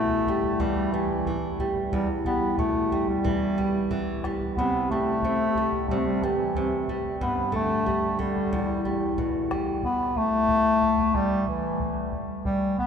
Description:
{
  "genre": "andean folk, Andean ensemble",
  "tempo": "91 BPM",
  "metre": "4/4",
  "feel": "straight",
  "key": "E minor",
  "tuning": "A4 = 440 Hz",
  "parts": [
    { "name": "warm bass clarinet", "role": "melody", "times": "0.0-12.9 s", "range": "D3 to B3", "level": "-25 LUFS", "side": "left 1 dB", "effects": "none" },
    { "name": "flamenco guitar", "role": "accompaniment", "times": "0.0-9.8 s", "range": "E2 to G3", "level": "-28 LUFS", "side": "right 1 dB", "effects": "none" },
    { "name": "bombo", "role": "percussion", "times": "0.3-12.9 s", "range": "none", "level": "-34 LUFS", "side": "equal", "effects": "none" }
  ],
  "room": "wet cathedral reverb, RT60 5.2 s",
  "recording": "recorded in a church or concert hall",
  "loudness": "-23 LUFS",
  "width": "side -7 dB against mid",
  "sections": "0.0-9.8 A section; 9.8-12.9 A section",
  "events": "none",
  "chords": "0.0 Em; 4.6 C5; 7.2 G5; 8.5 Em; 9.8 N.C.",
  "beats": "0.61 1.27 | 1.93 2.59 3.25 3.91 | 4.57 5.23 5.89 6.55 | 7.21 7.87 8.53 9.19 | 9.84 10.50 11.15 11.81 | 12.46"
}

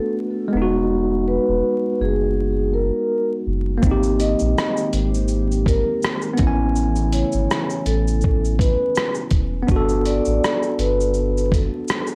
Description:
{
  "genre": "lo-fi hip hop",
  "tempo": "82 BPM",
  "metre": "4/4",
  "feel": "swing 58% on 16ths",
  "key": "unclear",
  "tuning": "A4 = 439 Hz",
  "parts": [
    { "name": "vibraphone with soft mallets", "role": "melody", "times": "0.0-11.8 s", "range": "G#4 to Eb5", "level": "-26 LUFS", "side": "equal", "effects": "low-pass filter, tape echo" },
    { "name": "tine electric piano", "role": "accompaniment", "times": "0.0-12.2 s", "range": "G#3 to G#5", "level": "-25 LUFS", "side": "equal", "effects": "cassette tape, low-pass filter" },
    { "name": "soft dub sub bass", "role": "bass", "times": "0.5-11.7 s", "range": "E1 to Bb1", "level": "-24 LUFS", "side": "equal", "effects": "none" },
    { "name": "dark analog pad", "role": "sustained chords", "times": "3.8-9.7 s", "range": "C#3 to G4", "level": "-33 LUFS", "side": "equal", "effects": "chorus, low-pass filter" },
    { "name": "dusty soul sampler-style drum kit", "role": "drums", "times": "3.8-12.2 s", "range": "hi-hat, kick drum, rim click, shaker", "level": "-25 LUFS", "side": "equal", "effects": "vintage 12-bit sampler grit" }
  ],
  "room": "little or no reverb",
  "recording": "dry, gritty hardware recording, vinyl crackle",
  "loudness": "-20 LUFS",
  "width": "mono",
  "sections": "0.0-12.2 A section",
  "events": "none",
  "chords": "0.0 Gmaj9 (rootless); 0.5 Emaj9; 3.8 Abmaj9; 6.4 Amaj9; 9.7 Gmaj9",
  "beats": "0.17 | 0.90 1.64 2.37 3.10 | 3.83 4.56 5.29 6.03 | 6.76 7.49 8.22 8.95 | 9.68 10.41 11.15 11.88"
}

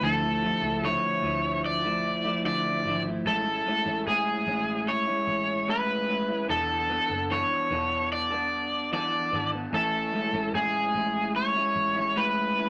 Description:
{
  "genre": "indie pop",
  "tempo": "74 BPM",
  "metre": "4/4",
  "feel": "straight",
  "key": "A major",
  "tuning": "A4 = 440 Hz",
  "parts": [
    { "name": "overdriven slide guitar", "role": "melody", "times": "0.0-12.7 s", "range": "G#4 to D5", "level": "-28 LUFS", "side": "equal", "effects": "none" },
    { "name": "electric guitar through a small old amp", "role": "accompaniment", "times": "0.0-12.7 s", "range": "A2 to A4", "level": "-33 LUFS", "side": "equal", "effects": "vibrato effect" },
    { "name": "vintage muted fingered electric bass", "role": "bass", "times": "0.0-12.4 s", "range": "E1 to A2", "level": "-40 LUFS", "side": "equal", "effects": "none" },
    { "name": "bright upright piano", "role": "accompaniment", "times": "9.7-12.7 s", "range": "E3 to G#5", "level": "-47 LUFS", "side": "equal", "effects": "none" }
  ],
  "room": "wet studio reverb, RT60 0.6 s",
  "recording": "none",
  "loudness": "-27 LUFS",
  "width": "mono",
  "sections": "0.0-12.7 A section",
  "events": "none",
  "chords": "0.0 Dmadd9; 3.3 Amaj7; 6.5 E7sus4; 9.7 Amaj7",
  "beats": "| 0.02 0.83 1.64 2.45 | 3.25 4.06 4.87 5.68 | 6.49 7.30 8.11 8.92 | 9.73 10.54 11.35 12.16"
}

